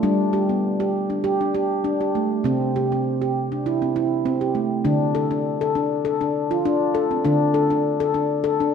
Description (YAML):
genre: world meditative, meditative tuned percussion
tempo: 100 BPM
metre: 4/4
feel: swing 53% on 16ths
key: unclear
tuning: A4 = 440 Hz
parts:
  - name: handpan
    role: solo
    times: 0.0-8.7 s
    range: C3 to A4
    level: -19 LUFS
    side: equal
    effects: none
room: wet scoring stage reverb, RT60 2.1 s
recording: none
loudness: -19 LUFS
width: side -7 dB against mid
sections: 0.0-4.8 A section; 4.8-8.7 B section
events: none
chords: 0.0 G; 2.4 C; 4.8 D5